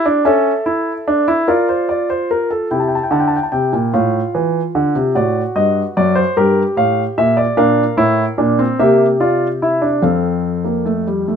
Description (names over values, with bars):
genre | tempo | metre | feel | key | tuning
classical, baroque-style 4-part fugue for grand piano | 49 BPM (dotted quarters) | 6/8 | straight | D minor, F major from 7.6 s | A4 = 440 Hz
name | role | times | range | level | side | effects
warm grand piano | solo | 0.0-11.4 s | F2 to A5 | -13 LUFS | equal | none
room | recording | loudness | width
moderate studio reverb, RT60 0.7 s | minimal, uncompressed stereo recording | -13 LUFS | side -7 dB against mid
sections
0.0-2.7 A section; 2.7-11.4 B section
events
none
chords
0.3 A/C#; 1.5 Dm/F; 2.7 C7; 3.9 F/A; 5.1 D7; 6.4 Gm; 7.6 Bbmaj9#11; 8.8 C7; 10.0 F